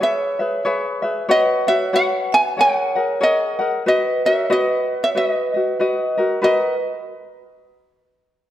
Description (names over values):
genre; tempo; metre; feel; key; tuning
Hawaiian; 93 BPM; 4/4; swing 60% on 8ths; B major; A4 = 445 Hz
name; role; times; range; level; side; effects
ukulele; melody; 0.0-6.8 s; D#5 to G#5; -19 LUFS; equal; none
vibraphone with medium hard mallets; second line; 0.0-6.8 s; A#4 to E5; -25 LUFS; right 3 dB; none
tenor ukulele; accompaniment; 0.0-6.7 s; F#4 to F#5; -20 LUFS; left 2 dB; none
room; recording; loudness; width
moderate concert hall reverb, RT60 1.8 s; none; -16 LUFS; side -12 dB against mid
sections
0.0-6.4 A section; 6.4-8.5 B section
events
none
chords
0.0 E6; 1.3 F#sus4; 2.6 F#add9; 3.9 Bmaj7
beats
0.00 0.65 | 1.29 1.93 2.58 3.22 | 3.86 4.51 5.15 5.79 | 6.44